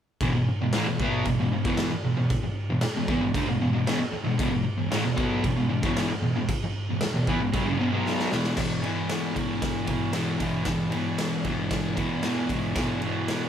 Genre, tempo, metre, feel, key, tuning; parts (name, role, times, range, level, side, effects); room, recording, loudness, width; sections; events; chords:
garage rock duo or trio; 115 BPM; 4/4; straight; A4 = 440 Hz
fuzz guitar; riff; 0.2-13.5 s; E2 to B3; -25 LUFS; equal; distortion
raw garage drum kit; drums; 0.2-13.4 s; crash cymbal, kick drum, ride cymbal, snare drum; -29 LUFS; equal
light reverb; band playing live in one room; -24 LUFS; side -9 dB against mid
0.2-8.6 A section; 8.6-13.5 B section
drum fill 8.1-8.6
0.2 E5